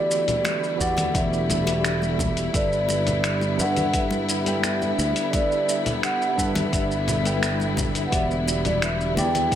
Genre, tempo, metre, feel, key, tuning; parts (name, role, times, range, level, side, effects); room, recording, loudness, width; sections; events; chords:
sunset chillout; 86 BPM; 4/4; straight; G major; A4 = 441 Hz
vibraphone with soft mallets; melody; 0.0-9.6 s; D5 to G5; -26 LUFS; equal; ping-pong delay
tine electric piano; accompaniment; 0.0-9.6 s; E3 to G5; -29 LUFS; equal; medium stereo tremolo, auto-pan, ping-pong delay
rich studio string section; sustained chords; 0.0-9.6 s; D3 to E4; -29 LUFS; equal
dusty soul sampler-style drum kit; drums; 0.1-9.6 s; congas, finger snaps, hi-hat, shaker; -28 LUFS; left 1 dB
congas; percussion; 0.4-9.5 s; -33 LUFS; left 2 dB
fingered electric bass; bass; 0.8-9.6 s; E1 to G2; -27 LUFS; equal
electronic kick drum; drums; 0.8-9.6 s; -28 LUFS; equal
moderate lush hall reverb, RT60 2.8 s; -20 LUFS; side -10 dB against mid
0.0-9.6 A section
0.0 Em7; 2.5 G6; 8.1 Em7